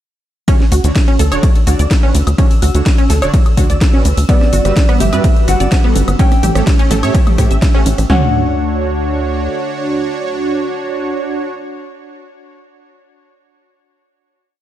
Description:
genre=progressive house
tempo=126 BPM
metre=4/4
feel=straight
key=D major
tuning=A4 = 438 Hz
part: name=wide unison pluck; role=arpeggios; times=0.5-8.3 s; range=B3 to E5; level=-20 LUFS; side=right 1 dB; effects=sidechain pumping, ping-pong delay
part: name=soft supersaw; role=stabs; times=0.5-11.5 s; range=D3 to F#5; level=-21 LUFS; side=right 3 dB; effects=analog chorus, sidechain pumping, ping-pong delay
part: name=big-room dance drum kit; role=drums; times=0.5-8.2 s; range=kick drum, snare drum, toms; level=-12 LUFS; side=equal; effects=overdrive, studio reverb
part: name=house drum kit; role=drums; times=0.5-8.1 s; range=cabasa, hi-hat, ride cymbal, snare drum, woodblock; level=-23 LUFS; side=left 1 dB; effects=overdrive, studio reverb
part: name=twinkling granular texture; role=texture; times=0.9-8.1 s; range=E6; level=-32 LUFS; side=equal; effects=built-in reverb, sidechain pumping
part: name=tight sequencer bass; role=bass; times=0.7-9.5 s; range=D1 to A2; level=-14 LUFS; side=equal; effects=sidechain pumping
part: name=dark concert grand piano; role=melody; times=4.3-11.5 s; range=D5 to G5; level=-23 LUFS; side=left 2 dB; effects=sidechain pumping, ping-pong delay
part: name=lush unison pad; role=sustained chords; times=4.3-11.5 s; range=D3 to C#5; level=-24 LUFS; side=left 1 dB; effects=chorus, phaser, sidechain pumping
part: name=punchy analog drum machine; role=percussion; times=4.4-8.1 s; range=congas, rim click, toms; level=-21 LUFS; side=right 3 dB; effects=sidechain pumping on snare, studio reverb, sidechain pumping on perc, sidechain pumping on toms
room=little or no reverb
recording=dark, warm production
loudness=-11 LUFS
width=side -12 dB against mid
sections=0.5-8.1 drop; 8.1-11.9 final chord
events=drop 0.5-8.1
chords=0.5 Dmaj7; 4.3 Gmaj7; 6.2 A7; 8.1 Dmaj7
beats=| 0.48 0.95 1.43 1.91 | 2.38 2.86 3.34 3.81 | 4.29 4.76 5.24 5.72 | 6.19 6.67 7.15 7.62 | 8.10 8.57 9.05 9.53 | 10.00 10.48 10.96 11.43

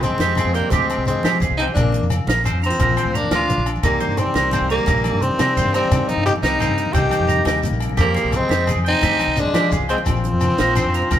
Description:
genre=highlife guitar band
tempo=116 BPM (dotted quarters)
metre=12/8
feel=straight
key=C minor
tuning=A4 = 440 Hz
part: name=growling tenor saxophone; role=melody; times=0.0-11.2 s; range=Bb3 to G4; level=-21 LUFS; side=equal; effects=none
part: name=growling alto saxophone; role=second line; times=0.0-11.2 s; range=F3 to Eb4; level=-28 LUFS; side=left 4 dB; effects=none
part: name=fingerpicked steel-string acoustic guitar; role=accompaniment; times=0.0-11.2 s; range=Bb2 to C5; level=-28 LUFS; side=left 4 dB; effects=none
part: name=fingered electric bass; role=bass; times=0.0-11.2 s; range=Bb1 to F3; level=-23 LUFS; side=equal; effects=none
part: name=compact cocktail drum kit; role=drums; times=0.0-11.2 s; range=hi-hat, kick drum, snare drum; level=-24 LUFS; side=right 1 dB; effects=none
part: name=agogo bells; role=percussion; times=0.0-11.2 s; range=none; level=-31 LUFS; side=left 4 dB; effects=none
part: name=congas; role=percussion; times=0.0-11.2 s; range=none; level=-28 LUFS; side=equal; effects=none
part: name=shekere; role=percussion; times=0.0-11.2 s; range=none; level=-28 LUFS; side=left 2 dB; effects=none
part: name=electric guitar at the edge of break-up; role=arpeggios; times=0.2-11.2 s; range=G4 to Bb5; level=-23 LUFS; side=right 4 dB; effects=none
room=moderate stone room reverb, RT60 1.3 s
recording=band playing live in one room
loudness=-16 LUFS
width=side -11 dB against mid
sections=0.0-11.2 A section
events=none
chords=0.0 Fmadd9; 1.8 Bbadd9; 3.8 Cm7; 8.0 Fmadd9; 10.1 Bbadd9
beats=0.20 0.72 1.24 | 1.76 2.28 2.80 3.32 | 3.83 4.36 4.87 5.39 | 5.91 6.43 6.95 7.47 | 7.99 8.51 9.03 9.55 | 10.07 10.59 11.11

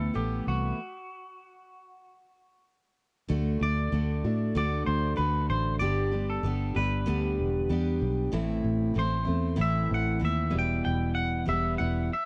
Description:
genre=folk rock and heartland rock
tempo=95 BPM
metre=4/4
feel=straight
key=unclear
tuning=A4 = 442 Hz
part: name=twangy electric guitar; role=melody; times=0.0-12.3 s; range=F#4 to G5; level=-35 LUFS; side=equal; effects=cassette tape, analog delay
part: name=picked steel-string acoustic guitar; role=accompaniment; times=0.0-12.1 s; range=E2 to G4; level=-33 LUFS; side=equal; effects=none
part: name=fingered electric bass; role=bass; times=0.0-12.1 s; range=E1 to A2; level=-31 LUFS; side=equal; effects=none
room=light reverb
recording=home recording on cassette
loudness=-28 LUFS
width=mono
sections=0.0-3.3 A section; 3.3-12.3 B section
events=stop 0.8-3.3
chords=0.0 Asus2; 0.8 N.C.; 3.3 D; 5.8 G; 8.3 Am; 10.5 Em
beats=0.14 | 0.77 1.40 2.04 2.67 | 3.30 3.93 4.56 5.19 | 5.82 6.45 7.07 7.70 | 8.33 8.96 9.59 10.22 | 10.85 11.47 12.10

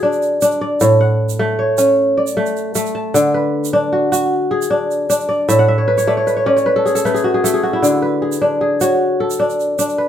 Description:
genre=west african traditional, West African string and xylophone music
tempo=102 BPM (dotted quarters)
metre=12/8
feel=straight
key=D lydian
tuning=A4 = 440 Hz
part: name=kora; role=arpeggios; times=0.0-10.1 s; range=A2 to A5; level=-14 LUFS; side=equal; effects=none
part: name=egg shaker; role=percussion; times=0.1-9.9 s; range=none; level=-25 LUFS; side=right 8 dB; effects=none
room=moderate studio reverb, RT60 0.8 s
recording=band playing live in one room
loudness=-13 LUFS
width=side -10 dB against mid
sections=0.0-7.8 A section; 7.8-10.1 B section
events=kora fill 5.5-7.8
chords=0.0 D; 0.8 A; 3.1 D; 5.5 A; 7.8 D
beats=0.23 | 0.81 1.40 1.98 2.56 | 3.15 3.73 4.32 4.91 | 5.49 6.08 6.66 7.25 | 7.84 8.42 9.01 9.60

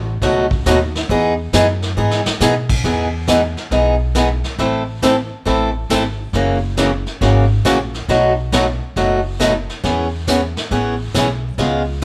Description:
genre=country, western swing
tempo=137 BPM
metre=4/4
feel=swing 67% on 8ths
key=E major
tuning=A4 = 440 Hz
part: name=upright bass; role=bass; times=0.0-12.0 s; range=F#1 to B2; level=-23 LUFS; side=equal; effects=none
part: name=picked swing-style acoustic guitar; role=accompaniment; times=0.2-12.0 s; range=B2 to A4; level=-19 LUFS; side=equal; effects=none
part: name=vintage brush drum kit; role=drums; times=0.2-12.0 s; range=brushed snare drum, crash cymbal, hi-hat, kick drum, snare drum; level=-25 LUFS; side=equal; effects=none
room=light reverb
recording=band playing live in one room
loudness=-17 LUFS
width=mono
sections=0.0-2.8 A section; 2.8-12.0 B section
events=drum fill 2.0-2.4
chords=0.0 B7; 1.1 Emaj7; 4.6 Am; 6.3 F#7; 8.1 B7; 9.8 E6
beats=0.22 0.66 | 1.09 1.53 1.97 2.41 | 2.84 3.28 3.72 4.16 | 4.59 5.03 5.47 5.91 | 6.34 6.78 7.22 7.65 | 8.09 8.53 8.96 9.40 | 9.84 10.28 10.71 11.15 | 11.59 12.03

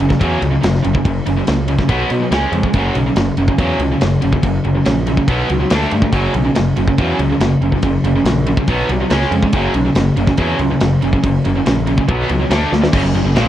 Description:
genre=heavy metal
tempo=141 BPM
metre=4/4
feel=straight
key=unclear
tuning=A4 = 439 Hz
part: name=distorted electric guitar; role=riff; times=0.0-13.5 s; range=F#2 to D4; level=-19 LUFS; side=left 7 dB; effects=distortion
part: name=distorted electric guitar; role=riff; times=0.0-13.5 s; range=F#2 to D4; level=-18 LUFS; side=right 6 dB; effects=overdrive
part: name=fuzz picked electric bass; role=bass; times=0.0-13.5 s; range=F#1 to B2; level=-18 LUFS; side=equal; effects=overdrive
part: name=tight metal drum kit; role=drums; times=0.0-13.5 s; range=crash cymbal, kick drum, ride cymbal, snare drum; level=-19 LUFS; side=equal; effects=none
room=moderate studio ambience, RT60 0.5 s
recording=worn, warbling old tape, cassette tape, warbly pitch drift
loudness=-13 LUFS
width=side -12 dB against mid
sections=0.0-12.9 A section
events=drum fill 12.7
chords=0.0 F#5; 1.9 B5; 2.3 C#5; 2.7 F#5; 5.3 B5; 5.7 D5; 6.1 F#5; 8.7 B5; 9.1 C#5; 9.5 F#5; 12.1 B5; 12.5 D5; 12.9 F#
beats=0.21 0.63 | 1.05 1.48 1.90 2.32 | 2.75 3.17 3.59 4.01 | 4.44 4.86 5.28 5.71 | 6.13 6.56 6.98 7.41 | 7.83 8.25 8.68 9.10 | 9.53 9.96 10.38 10.81 | 11.23 11.66 12.09 12.51 | 12.94 13.36

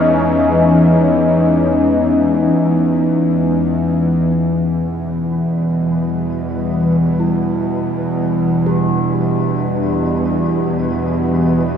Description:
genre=dark ambient drone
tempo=free time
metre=none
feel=none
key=unclear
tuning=A4 = 444 Hz
part: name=sweeping resonant pad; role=sustained chords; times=0.0-11.8 s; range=E3 to D#4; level=-17 LUFS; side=left 1 dB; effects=chorus
part: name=bowed-like drone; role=drone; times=0.0-11.8 s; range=E2 to E3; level=-16 LUFS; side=equal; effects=built-in reverb
part: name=flickering grainy texture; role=texture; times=5.0-11.8 s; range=B4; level=-35 LUFS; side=left 1 dB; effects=built-in reverb
part: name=bronze singing bowl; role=arpeggios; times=7.2-11.8 s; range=E4 to G4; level=-23 LUFS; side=equal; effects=tape echo
room=wet cathedral reverb, RT60 5.8 s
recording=small room ambience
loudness=-13 LUFS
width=side -8 dB against mid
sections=0.0-4.4 A section; 4.4-11.8 B section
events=fade-in on synth texture 4.4-11.8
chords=0.0 G#m; 4.4 Em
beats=free time

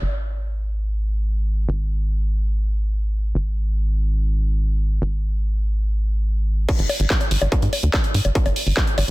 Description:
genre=psychedelic trance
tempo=144 BPM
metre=4/4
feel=straight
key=unclear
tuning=A4 = 440 Hz
part: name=tight sequencer bass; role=bass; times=0.0-9.1 s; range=G#1 to G#2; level=-20 LUFS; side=equal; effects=none
part: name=electronic kick drum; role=drums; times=6.7-8.9 s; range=none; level=-21 LUFS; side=equal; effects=distortion
part: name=techno drum kit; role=drums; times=6.7-9.1 s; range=bongos, crash cymbal, handclaps, hi-hat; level=-24 LUFS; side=left 1 dB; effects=low-pass filter on hats, low-pass filter on perc, low-pass filter on snare, low-pass filter on cymbals, low-pass filter on room
room=little or no reverb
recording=dense, heavily limited modern master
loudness=-19 LUFS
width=side -19 dB against mid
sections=0.0-6.7 A section; 6.7-9.1 B section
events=drop 6.7-9.1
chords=none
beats=| 0.02 0.44 0.85 1.27 | 1.69 2.10 2.52 2.94 | 3.35 3.77 4.19 4.60 | 5.02 5.44 5.85 6.27 | 6.69 7.10 7.52 7.94 | 8.35 8.77

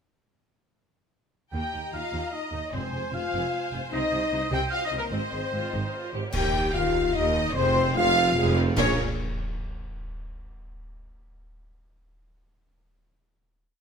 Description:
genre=cinematic, heroic adventure film score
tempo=150 BPM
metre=3/4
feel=straight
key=unclear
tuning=A4 = 441 Hz
part: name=warm symphonic violin section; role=melody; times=1.5-9.0 s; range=Bb4 to G5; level=-31 LUFS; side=left 1 dB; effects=none
part: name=clear symphonic violin section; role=second line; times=1.5-9.0 s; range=C5 to Bb5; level=-35 LUFS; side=left 2 dB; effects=none
part: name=warm oboe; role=second line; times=1.5-6.1 s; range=Bb4 to G5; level=-36 LUFS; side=right 2 dB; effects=none
part: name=bright symphonic viola section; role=accompaniment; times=1.5-9.0 s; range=Ab3 to C5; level=-35 LUFS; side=right 2 dB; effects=none
part: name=dark French horn section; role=sustained chords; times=1.5-8.9 s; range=Bb3 to G4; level=-30 LUFS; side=left 6 dB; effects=none
part: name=dark trumpet section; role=stabs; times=1.5-8.9 s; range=Bb4 to G5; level=-32 LUFS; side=right 4 dB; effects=none
part: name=rich symphonic cello section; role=bass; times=1.5-9.0 s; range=Eb2 to C3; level=-33 LUFS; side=right 2 dB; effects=none
part: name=warm symphonic double bass section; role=bass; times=1.5-9.0 s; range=F1 to Eb2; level=-32 LUFS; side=right 2 dB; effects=none
part: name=warm tuba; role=bass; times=1.5-8.9 s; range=F1 to Eb2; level=-34 LUFS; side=right 5 dB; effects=none
part: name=timpani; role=percussion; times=2.7-3.3, 8.8-8.9 s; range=F2 to Bb2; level=-36 LUFS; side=right 1 dB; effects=none
part: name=cymbal swell, clash cymbals and concert bass drum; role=percussion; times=3.9-9.5 s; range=none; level=-35 LUFS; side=equal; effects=none
part: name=mellow concert flute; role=second line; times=6.3-9.0 s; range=C5 to G5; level=-33 LUFS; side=left 4 dB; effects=none
room=moderate recital hall reverb, RT60 1.5 s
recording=none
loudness=-23 LUFS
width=side -6 dB against mid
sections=1.5-6.3 theme; 6.3-8.8 outro; 8.8-10.0 final chord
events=band accent 6.3-6.7, 8.8-9.2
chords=1.5 Eb; 2.7 Fm; 3.9 Cm; 5.1 Ab; 6.3 Eb; 7.5 Fm; 8.8 Bbm7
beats=| 1.53 1.93 2.33 | 2.73 3.14 3.54 | 3.93 4.33 4.72 | 5.13 5.54 5.94 | 6.35 6.75 7.15 | 7.54 7.95 8.36 | 8.77 9.16

